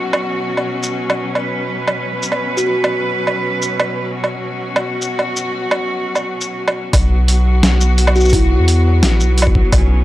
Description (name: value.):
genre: half-time drum and bass.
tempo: 172 BPM.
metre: 4/4.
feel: swing 53% on 16ths, half-time.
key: unclear.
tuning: A4 = 442 Hz.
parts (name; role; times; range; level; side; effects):
rich studio cello section; sustained chords; 0.0-10.0 s; B2 to B4; -20 LUFS; equal; sidechain pumping.
boom bap sampler-style drum kit; drums; 0.1-9.8 s; hi-hat, shaker, snare drum, woodblock; -17 LUFS; right 1 dB; overdrive, small room ambience.
kalimba; melody; 2.6-2.7, 8.2-8.8 s; E4 to F#4; -22 LUFS; equal; analog delay.
saturated sub bass; bass; 6.9-10.0 s; A1 to E2; -12 LUFS; equal; tube saturation.
electronic kick drum; drums; 6.9-9.8 s; none; -14 LUFS; equal; overdrive, small room ambience.
room: little or no reverb.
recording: dry, gritty hardware recording.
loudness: -14 LUFS.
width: side -15 dB against mid.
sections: 0.0-6.9 A section; 6.9-10.0 B section.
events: drop 6.9-10.0.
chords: 0.0 B5.